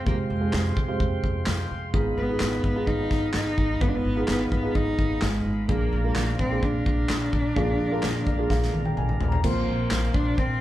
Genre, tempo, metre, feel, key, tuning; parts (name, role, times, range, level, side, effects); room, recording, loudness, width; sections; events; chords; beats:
piano-driven pop; 128 BPM; 4/4; straight; A4 = 440 Hz
dark cello; melody; 0.0-10.6 s; Ab3 to Eb4; -28 LUFS; equal
felt-muted upright piano; accompaniment; 0.0-10.6 s; Ab2 to Bb5; -29 LUFS; right 2 dB
tonewheel organ; sustained chords; 0.0-10.6 s; Ab3 to C6; -36 LUFS; left 2 dB; slow rotary speaker
upright bass; bass; 0.0-10.6 s; Ab1 to F2; -28 LUFS; equal
loose indie drum kit; drums; 0.1-10.5 s; crash cymbal, handclaps, kick drum, snare drum, toms; -27 LUFS; equal
moderate large studio reverb, RT60 1.2 s; band playing live in one room; -22 LUFS; side -14 dB against mid
0.0-9.4 A section; 9.4-10.6 B section
felt piano fill 8.0-9.4; drum fill 8.5-9.4
0.0 Fmadd9; 1.9 Abm6; 5.7 Bb7; 9.4 Bbsus2
| 0.07 0.53 1.00 1.47 | 1.94 2.41 2.88 3.35 | 3.82 4.29 4.75 5.22 | 5.69 6.16 6.63 7.10 | 7.57 8.04 8.50 8.97 | 9.44 9.91 10.38